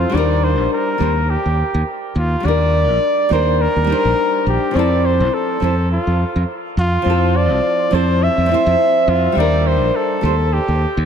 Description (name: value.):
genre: sunset chillout.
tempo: 104 BPM.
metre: 4/4.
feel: swing 57% on 16ths.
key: unclear.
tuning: A4 = 440 Hz.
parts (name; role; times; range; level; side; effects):
clear flugelhorn; melody; 0.0-11.1 s; F4 to E5; -18 LUFS; equal; diffuse ambient delay.
nylon-string guitar; accompaniment; 0.0-10.3 s; F3 to C5; -20 LUFS; left 1 dB; auto-pan, diffuse ambient delay.
modern bright fingered electric bass; bass; 0.0-11.0 s; Bb1 to F2; -17 LUFS; equal; none.
room: wet lush hall reverb, RT60 2.5 s.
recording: dreamy mix soaked in reverb.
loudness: -14 LUFS.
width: side -8 dB against mid.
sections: 0.0-11.1 A section.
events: none.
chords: 0.1 Ebmaj7; 4.8 Fmaj7; 9.4 Ebmaj7.